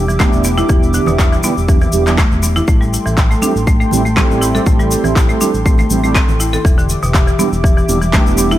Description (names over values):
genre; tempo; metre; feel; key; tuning
afro house; 121 BPM; 4/4; swing 53% on 16ths; A minor; A4 = 440 Hz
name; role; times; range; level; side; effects
warm analog pad; sustained chords; 0.0-8.6 s; G4 to D6; -22 LUFS; equal; chorus, sidechain pumping
mellow synth brass; stabs; 0.0-8.6 s; G3 to G4; -19 LUFS; right 3 dB; chorus, sidechain pumping, ping-pong delay
smooth synth bass; bass; 0.0-8.6 s; E1 to A1; -18 LUFS; equal; sidechain pumping
buzzing marimba with hard mallets; arpeggios; 0.1-8.6 s; B2 to A4; -19 LUFS; left 1 dB; sidechain pumping, ping-pong delay
congas; percussion; 0.1-8.6 s; none; -24 LUFS; right 4 dB; none
tube shaker; percussion; 0.1-8.6 s; none; -24 LUFS; left 2 dB; none
electronic handclaps; drums; 0.2-8.2 s; none; -22 LUFS; left 1 dB; overdrive
electronic kick drum; drums; 0.2-8.2 s; none; -13 LUFS; equal; overdrive
room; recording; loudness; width
digital ambience; none; -11 LUFS; side -13 dB against mid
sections
0.0-8.6 A section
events
none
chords
0.0 Em7; 2.7 Am7; 6.7 Em7